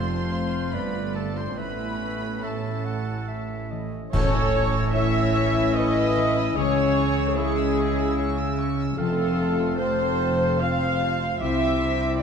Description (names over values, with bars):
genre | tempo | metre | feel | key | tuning
cinematic, emotional film score for orchestra | 73 BPM | 3/4 | uneven beats, rubato | unclear | A4 = 440 Hz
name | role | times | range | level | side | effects
dark studio violin section | melody | 0.0-12.2 s | A5 to E6 | -40 LUFS | left 2 dB | none
clear clarinet | second line | 0.0-12.2 s | C4 to F#5 | -32 LUFS | left 3 dB | none
clear oboe | second line | 0.0-12.2 s | A4 to E6 | -36 LUFS | right 1 dB | none
warm studio violin section | second line | 0.0-12.2 s | E4 to C#5 | -33 LUFS | left 4 dB | none
warm studio viola section | accompaniment | 0.0-12.2 s | A3 to F5 | -28 LUFS | right 2 dB | none
warm French horn section | sustained chords | 0.0-12.2 s | G#3 to F4 | -30 LUFS | left 4 dB | none
concert harp | arpeggios | 0.0-12.2 s | A2 to C#6 | -33 LUFS | left 10 dB | none
rich studio double bass section | bass | 0.0-12.2 s | F1 to C#2 | -30 LUFS | right 3 dB | none
warm studio cello section | bass | 0.0-12.2 s | F2 to C#3 | -30 LUFS | right 4 dB | none
hollow concert flute | second line | 4.1-12.2 s | G#4 to F5 | -32 LUFS | left 2 dB | none
clash cymbals and concert bass drum | percussion | 4.1-5.7 s | none | -30 LUFS | equal | none
timpani | percussion | 4.1-5.3 s | A2 | -32 LUFS | left 2 dB | none
room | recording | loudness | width
moderate scoring stage reverb, RT60 1.9 s | dark, warm production | -21 LUFS | side -6 dB against mid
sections
0.0-4.1 A section; 4.1-12.2 B section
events
band accent 4.1-4.9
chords
0.0 F; 1.6 A; 6.6 C#m; 9.0 F; 11.4 Csus2